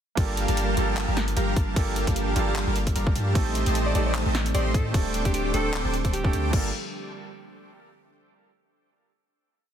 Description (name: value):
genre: future bass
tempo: 151 BPM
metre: 4/4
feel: swing 56% on 16ths, half-time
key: G minor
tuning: A4 = 440 Hz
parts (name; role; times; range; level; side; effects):
- felt-muted upright piano; accompaniment; 0.2-6.7 s; G3 to A4; -32 LUFS; right 7 dB; sidechain pumping, tape echo
- airy breathy pad; sustained chords; 0.4-6.7 s; D3 to G4; -36 LUFS; equal; chorus, sidechain pumping
- dense compressed supersaw; riff; 0.2-6.7 s; G3 to D6; -29 LUFS; equal; sidechain pumping, tape echo
- warm 808-style bass; bass; 0.2-6.7 s; D1 to A2; -27 LUFS; equal; sidechain pumping
- electronic kick drum; drums; 0.2-6.6 s; none; -24 LUFS; equal; none
- pop drum kit; drums; 0.2-6.6 s; crash cymbal, handclaps, hi-hat, snare drum; -32 LUFS; equal; none
- warm alto saxophone; melody; 3.9-6.5 s; G4 to D5; -33 LUFS; equal; vintage 12-bit sampler grit, sidechain pumping, tape echo
room: little or no reverb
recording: dense, heavily limited modern master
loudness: -22 LUFS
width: side -9 dB against mid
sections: 0.2-6.5 drop; 6.5-8.1 final chord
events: drop 0.2-6.5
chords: 0.2 Gm7; 3.4 Am7b5; 4.9 D7sus4; 6.5 Gm7